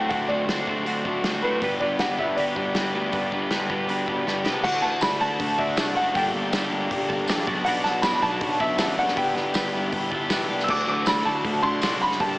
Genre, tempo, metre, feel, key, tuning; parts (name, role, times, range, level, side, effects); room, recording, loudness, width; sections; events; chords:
indie rock; 159 BPM; 4/4; straight; D mixolydian; A4 = 436 Hz
warm upright piano; melody; 0.0-12.4 s; B4 to E6; -25 LUFS; equal; slapback echo
overdriven semi-hollow guitar; riff; 0.0-12.4 s; F#3 to G4; -28 LUFS; left 2 dB; spring reverb, slapback echo
twelve-string electric guitar; riff; 0.0-12.4 s; B2 to D5; -29 LUFS; right 1 dB; wide subtle chorus, tape echo
fuzz picked electric bass; bass; 0.0-12.4 s; E1 to A2; -32 LUFS; equal; overdrive
loose indie drum kit; drums; 0.1-12.3 s; crash cymbal, hi-hat, kick drum, snare drum; -29 LUFS; equal
tambourine; percussion; 5.0-11.9 s; -37 LUFS; right 2 dB
wet lush hall reverb, RT60 1.7 s, small room ambience; big arena sound, small speaker sound; -21 LUFS; side -20 dB against mid
0.0-4.6 A section; 4.6-12.4 B section
drum fill 4.3-4.6
0.0 D7; 1.6 Gmaj7; 4.6 Dadd9; 6.2 Gmadd9; 7.5 Bm; 9.2 G6; 10.7 Dadd9